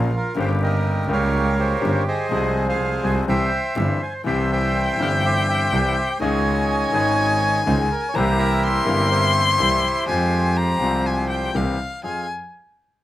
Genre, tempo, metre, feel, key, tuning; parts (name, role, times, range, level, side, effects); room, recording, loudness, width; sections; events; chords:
tango; 124 BPM; 4/4; rubato; F minor; A4 = 442 Hz
bandoneon; melody; 0.0-12.3 s; E4 to Ab5; -23 LUFS; right 2 dB
clear concert grand piano; accompaniment; 0.0-12.2 s; G1 to Ab4; -25 LUFS; left 4 dB
dark double bass; bass; 0.0-12.2 s; G1 to F2; -23 LUFS; right 2 dB
warm violin; second line; 4.2-12.3 s; F5 to C6; -23 LUFS; left 3 dB
little or no reverb; recorded outdoors, with no room sound; -18 LUFS; side -14 dB against mid
0.0-12.0 A section; 12.0-13.0 B section
0.4 Gdim; 2.3 Fm/C; 3.3 C; 6.2 Dbsus2; 8.1 C7; 10.1 Fm; 11.5 C7; 12.0 Fm